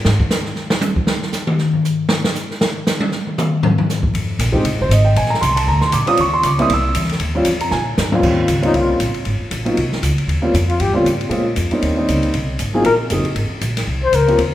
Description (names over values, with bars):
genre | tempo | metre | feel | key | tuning
jazz, small-group swing and bop | 234 BPM | 4/4 | swing 57% on 8ths | Eb mixolydian | A4 = 439 Hz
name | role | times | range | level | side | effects
upright bass | bass | 0.0-0.2, 4.1-14.5 s | F1 to Bb2 | -19 LUFS | equal | none
open jazz drum kit | drums | 0.0-14.5 s | crash cymbal, hi-hat, kick drum, ride cymbal, snare drum, toms | -20 LUFS | left 1 dB | none
warm grand piano | accompaniment | 4.5-14.4 s | Eb2 to E6 | -18 LUFS | right 1 dB | none
breathy flugelhorn | melody | 8.7-14.4 s | Eb4 to C5 | -18 LUFS | left 4 dB | none
room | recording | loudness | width
wet recital hall reverb, RT60 1.6 s | recorded in a church or concert hall | -15 LUFS | side -13 dB against mid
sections
0.0-8.2 A section; 8.2-14.5 B section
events
drum solo 0.0-4.1; drum fill 7.7-8.2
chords
0.0 N.C.; 4.1 Fm7; 5.2 Bbadd9; 6.2 Eb6; 6.7 C; 7.2 Eb13; 7.7 Bbsus2; 8.2 Eb13; 9.3 Abadd9; 10.3 Eb13; 11.3 Bbm7; 11.8 Eb6; 12.3 Ab9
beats
| 0.04 0.30 0.56 0.81 | 1.07 1.32 1.58 1.84 | 2.09 2.35 2.60 2.86 | 3.12 3.37 3.63 3.88 | 4.14 4.39 4.65 4.91 | 5.16 5.42 5.67 5.93 | 6.18 6.44 6.70 6.95 | 7.21 7.46 7.72 7.98 | 8.23 8.49 8.74 9.00 | 9.26 9.51 9.77 10.03 | 10.28 10.54 10.80 11.05 | 11.31 11.57 11.82 12.08 | 12.34 12.60 12.85 13.11 | 13.37 13.62 13.88 14.14 | 14.39